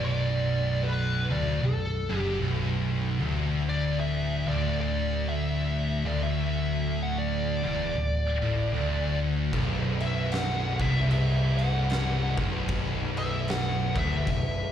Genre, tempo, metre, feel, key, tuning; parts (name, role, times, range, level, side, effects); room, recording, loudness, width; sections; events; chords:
stoner and doom metal; 76 BPM; 4/4; swing 60% on 8ths; B minor; A4 = 441 Hz
fuzz lead guitar; melody; 0.0-14.7 s; A4 to F#5; -32 LUFS; equal; wah, distortion, tape echo
heavy high-gain guitar; riff; 0.0-14.7 s; B1 to A2; -36 LUFS; right 1 dB; distortion, slapback echo
thick fuzz guitar; riff; 0.0-14.7 s; B1 to A2; -30 LUFS; left 5 dB; distortion
thick fuzz guitar; riff; 0.0-14.7 s; B1 to A2; -32 LUFS; right 7 dB; distortion
overdriven picked electric bass; bass; 0.0-14.7 s; B0 to A1; -32 LUFS; equal; tube saturation
oversized low-tuned drum kit; drums; 9.5-14.5 s; crash cymbal, kick drum, snare drum; -32 LUFS; equal
little or no reverb; live gig heard through the venue's PA, recital hall reverb; -25 LUFS; side -9 dB against mid
0.0-14.7 A section
0.0 Bm; 3.2 D5; 9.5 Bm